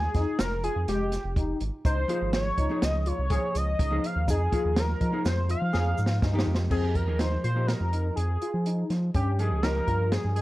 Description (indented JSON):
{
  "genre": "progressive instrumental, band music in an uneven meter",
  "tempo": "123 BPM",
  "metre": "5/4",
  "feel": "straight",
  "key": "F minor",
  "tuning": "A4 = 441 Hz",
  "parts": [
    { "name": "octave-doubled lead", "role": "melody", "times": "0.0-10.4 s", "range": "G4 to F5", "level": "-31 LUFS", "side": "equal", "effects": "chorus" },
    { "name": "round analog bass", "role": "bass", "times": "0.0-10.4 s", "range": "F1 to F3", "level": "-27 LUFS", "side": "equal", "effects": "none" },
    { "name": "open jazz drum kit", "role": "drums", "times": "0.1-10.4 s", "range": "crash cymbal, hi-hat, kick drum, snare drum", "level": "-30 LUFS", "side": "equal", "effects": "none" },
    { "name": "tine electric piano", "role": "arpeggios", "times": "0.2-10.4 s", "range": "Ab3 to Ab4", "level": "-35 LUFS", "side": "left 4 dB", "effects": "ensemble chorus, tape echo" },
    { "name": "egg shaker", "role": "percussion", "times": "0.4-6.3 s", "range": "none", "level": "-48 LUFS", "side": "right 4 dB", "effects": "none" },
    { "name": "vintage hollow-body jazz guitar", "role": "accompaniment", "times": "2.1-10.4 s", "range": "F3 to Ab4", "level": "-34 LUFS", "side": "right 1 dB", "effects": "none" }
  ],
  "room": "small room ambience",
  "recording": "worn, warbling old tape, cassette tape, warbly pitch drift",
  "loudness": "-24 LUFS",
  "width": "side -17 dB against mid",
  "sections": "0.0-6.7 A section; 6.7-10.4 B section",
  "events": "drum fill 5.7-6.7",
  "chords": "0.0 Fm9; 1.8 Dbmaj9; 4.3 Fm9; 6.7 Fm7; 9.2 Eb7"
}